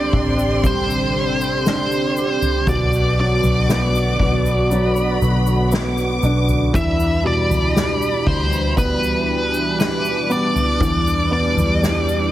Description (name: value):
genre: pop ballad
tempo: 59 BPM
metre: 4/4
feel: straight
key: E minor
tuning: A4 = 440 Hz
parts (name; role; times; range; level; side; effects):
- nasal lead guitar with a parked wah; melody; 0.0-12.3 s; B4 to E5; -22 LUFS; equal; overdrive
- warm studio violin section; second line; 0.0-12.3 s; B5 to D6; -29 LUFS; left 1 dB; none
- warm upright piano; accompaniment; 0.0-12.3 s; B2 to G4; -22 LUFS; right 1 dB; none
- warm analog pad; sustained chords; 0.0-12.3 s; D3 to G4; -25 LUFS; equal; chorus
- vintage muted fingered electric bass; bass; 0.0-12.3 s; A1 to E2; -21 LUFS; equal; none
- soft-mallet drum kit; drums; 0.1-12.1 s; kick drum, snare drum, toms; -22 LUFS; equal; none
- tube shaker; percussion; 0.4-12.3 s; none; -38 LUFS; left 5 dB; none
room: light reverb, studio reverb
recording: heavily compressed radio sound, multiband compression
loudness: -16 LUFS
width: side -14 dB against mid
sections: 0.0-12.3 A section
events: none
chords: 0.0 Csus2; 2.7 Bm; 6.7 Em7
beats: 0.64 1.66 | 2.67 3.69 4.71 5.72 | 6.74 7.76 8.77 9.79 | 10.81 11.82